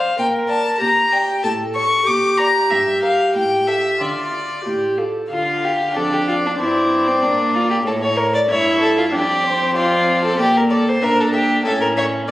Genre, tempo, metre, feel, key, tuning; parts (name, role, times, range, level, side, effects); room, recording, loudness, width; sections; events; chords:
quick classical-period movement for string quartet; 95 BPM; 2/4; straight; D minor; A4 = 440 Hz
warm violin; melody; 0.0-12.3 s; C5 to D6; -20 LUFS; left 2 dB
rich violin; second line; 0.0-12.1 s; C4 to D5; -19 LUFS; equal
warm viola; accompaniment; 0.0-12.3 s; A3 to C5; -21 LUFS; right 1 dB
dark cello; bass; 0.0-12.3 s; F2 to D3; -25 LUFS; right 1 dB
wet recital hall reverb, RT60 1.5 s; recorded on a phone in the room, club reverb, compression; -15 LUFS; side -16 dB against mid
0.0-5.3 A section; 5.3-12.3 B section
0.2 Gm/Bb; 1.4 A; 2.1 Bb; 2.7 Edim/G; 3.3 A5; 4.0 Dm; 6.0 Dm/F; 6.6 Gm; 7.9 A; 8.5 A7/G; 9.1 Dm/F; 10.4 Bbmaj7sus2; 11.0 Em7b5/Bb (rootless); 11.6 A